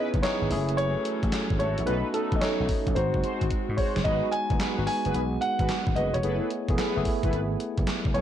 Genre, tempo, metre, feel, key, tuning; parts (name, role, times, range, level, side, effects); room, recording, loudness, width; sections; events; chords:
R&B, new jack swing; 110 BPM; 4/4; swing 66% on 16ths; A4 = 440 Hz
tine electric piano; accompaniment; 0.0-8.2 s; G#3 to A4; -31 LUFS; right 1 dB; medium stereo tremolo
warm chamber string section; sustained chords; 0.0-4.0 s; C#3 to F#4; -35 LUFS; left 2 dB
mellow synth brass; stabs; 0.0-8.2 s; C#4 to B#4; -34 LUFS; equal; chorus, phaser
vintage slap bass; bass; 0.1-8.2 s; E1 to G#2; -29 LUFS; equal
gated 80s digital drum machine; drums; 0.1-8.2 s; handclaps, hi-hat, kick drum, snare drum; -29 LUFS; equal; gated reverb, gated reverb snare
dark concert grand piano; melody; 0.2-8.2 s; A4 to G#5; -30 LUFS; equal
little or no reverb; -24 LUFS; side -10 dB against mid
0.0-4.1 A section; 4.1-8.2 B section
drum fill 3.0-4.1
0.0 C#m7; 0.5 F#m7; 1.9 B7; 3.0 G#7; 4.1 G#m7; 6.2 F#m11